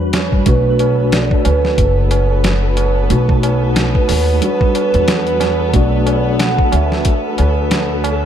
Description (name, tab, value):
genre	trip hop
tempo	91 BPM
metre	4/4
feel	swing 58% on 16ths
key	B minor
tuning	A4 = 440 Hz
part	mellow tine electric piano	accompaniment	0.0-8.3 s	G3 to F#4	-20 LUFS	left 1 dB	medium stereo tremolo, low-pass filter, tape echo
part	upright bass	bass	0.0-8.3 s	F#1 to G2	-16 LUFS	equal	none
part	flickering grainy texture	texture	0.0-8.3 s	A4 to B4	-27 LUFS	left 1 dB	built-in reverb, lush chorus
part	boom bap sampler-style drum kit	drums	0.1-8.2 s	hi-hat, kick drum, snare drum	-18 LUFS	equal	none
part	tabla	percussion	0.1-8.3 s	none	-25 LUFS	right 6 dB	none
part	vibraphone with soft mallets	melody	0.5-7.2 s	B4 to F#5	-20 LUFS	right 4 dB	tape echo
part	warm studio violin section	sustained chords	0.5-8.3 s	B3 to B4	-24 LUFS	right 1 dB	none
room	moderate plate reverb, RT60 3.5 s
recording	dreamy mix soaked in reverb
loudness	-12 LUFS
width	side -9 dB against mid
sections	0.0-8.3 A section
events	filter sweep on tine electric piano 0.0-8.3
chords	0.5 Bm7; 3.1 B7; 4.4 Em7; 5.7 Bm7